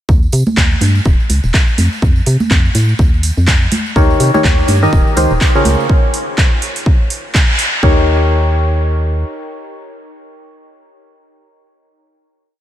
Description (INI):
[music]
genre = piano house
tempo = 124 BPM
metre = 4/4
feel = swing 58% on 16ths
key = Eb mixolydian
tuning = A4 = 440 Hz
[part]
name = organ-like FM bass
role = bass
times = 0.1-9.2 s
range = Eb1 to C3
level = -13 LUFS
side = equal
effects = sidechain pumping
[part]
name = electronic kick drum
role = drums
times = 0.1-7.9 s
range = none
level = -12 LUFS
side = equal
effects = small room ambience
[part]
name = tambourine and congas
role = percussion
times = 0.1-5.9 s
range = none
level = -22 LUFS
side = right 2 dB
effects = none
[part]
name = house drum kit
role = drums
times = 0.3-7.7 s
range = handclaps, hi-hat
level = -19 LUFS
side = equal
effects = small room ambience
[part]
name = percussive organ stab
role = riff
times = 4.0-12.2 s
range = Db3 to Eb5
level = -16 LUFS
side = left 1 dB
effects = wide subtle chorus, sidechain pumping, analog delay
[sound]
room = light reverb, digital ambience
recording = none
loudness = -10 LUFS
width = side -12 dB against mid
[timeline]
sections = 0.1-7.8 groove; 7.8-11.7 final chord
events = band accent 7.3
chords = 0.1 Eb; 1.8 F7(no3); 3.7 Eb7; 5.7 Db6; 7.8 Eb7